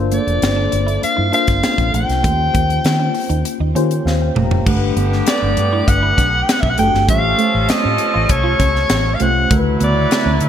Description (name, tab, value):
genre	polished 1980s jazz-funk pop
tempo	99 BPM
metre	4/4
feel	straight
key	unclear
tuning	A4 = 436 Hz
part	mellow tine electric piano	accompaniment	0.0-10.5 s	C#3 to Bb5	-21 LUFS	left 3 dB	medium stereo tremolo, lush chorus
part	vintage muted fingered electric bass	bass	0.0-10.5 s	F1 to Eb3	-18 LUFS	equal	none
part	warm soprano saxophone	melody	0.1-10.4 s	C#5 to G5	-18 LUFS	equal	none
part	clean electric guitar	riff	0.1-10.4 s	G3 to E#4	-26 LUFS	right 6 dB	analog chorus
part	crisp fusion drum kit	drums	0.1-10.5 s	crash cymbal, hi-hat, kick drum, snare drum, toms	-19 LUFS	equal	gated reverb
part	warm horn section	second line	4.7-10.5 s	D3 to B4	-24 LUFS	right 2 dB	ping-pong delay
room	light reverb, studio reverb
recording	bright 1980s-style digital production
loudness	-13 LUFS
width	side -9 dB against mid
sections	0.0-4.7 A section; 4.7-10.5 B section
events	tine electric piano fill 3.8-4.7; drum fill 4.1-4.7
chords	0.0 Gm11; 2.2 Eb13; 4.7 Gmaj9; 7.1 A7alt; 9.5 Dmaj13